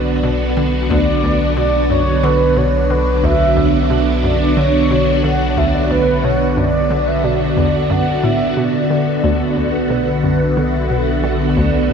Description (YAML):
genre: ambient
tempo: 90 BPM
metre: 4/4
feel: straight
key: B minor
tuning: A4 = 443 Hz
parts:
  - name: mellow horn-like synth lead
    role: melody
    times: 0.0-11.9 s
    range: B4 to F#5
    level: -19 LUFS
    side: right 1 dB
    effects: chorus, ping-pong delay
  - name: phased string machine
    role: sustained chords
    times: 0.0-11.9 s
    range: D3 to A4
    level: -17 LUFS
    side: equal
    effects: ensemble chorus, phaser
  - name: warm sub bass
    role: bass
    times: 0.0-11.9 s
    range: B1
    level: -20 LUFS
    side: equal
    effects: none
  - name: bubbling stepped-filter texture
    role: texture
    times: 0.0-11.9 s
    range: B3 to B4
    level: -32 LUFS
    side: equal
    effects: none
  - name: hollow square pluck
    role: riff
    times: 0.2-11.9 s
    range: D2 to D3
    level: -21 LUFS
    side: left 1 dB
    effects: chorus, ping-pong delay
room: wet cathedral reverb, RT60 5.0 s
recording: in a vast, echoing space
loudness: -13 LUFS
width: side -6 dB against mid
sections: 0.0-11.9 A section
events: none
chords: 0.0 Bm7